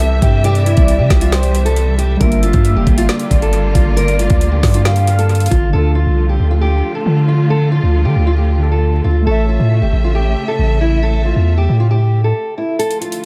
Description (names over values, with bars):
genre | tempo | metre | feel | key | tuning
hip hop, trap | 136 BPM | 4/4 | half-time | D minor | A4 = 440 Hz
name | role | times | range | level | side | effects
fingerpicked steel-string acoustic guitar | melody | 0.0-13.3 s | E4 to Bb4 | -23 LUFS | equal | low-pass filter, analog delay
warm velvety synth lead | second line | 0.0-5.7 s | C5 to F5 | -26 LUFS | equal | chorus, analog delay
warbly lo-fi synth keys | accompaniment | 0.0-12.4 s | C3 to E5 | -26 LUFS | equal | chorus, low-pass filter, analog delay
dark symphonic string section | sustained chords | 0.0-13.3 s | C3 to E5 | -26 LUFS | equal | none
long sustained 808-style bass | bass | 0.0-12.3 s | F1 to D3 | -16 LUFS | equal | none
trap drum kit | drums | 0.0-5.6, 12.8-13.2 s | hi-hat, kick drum, snare drum | -18 LUFS | equal | none
room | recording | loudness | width
little or no reverb | echo-heavy mix, vinyl crackle | -14 LUFS | mono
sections
0.0-5.7 A section; 5.7-12.8 B section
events
stop 12.4-12.8; kick muted 12.8-13.3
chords
0.0 C; 2.2 Gm7; 5.7 Dm; 9.3 A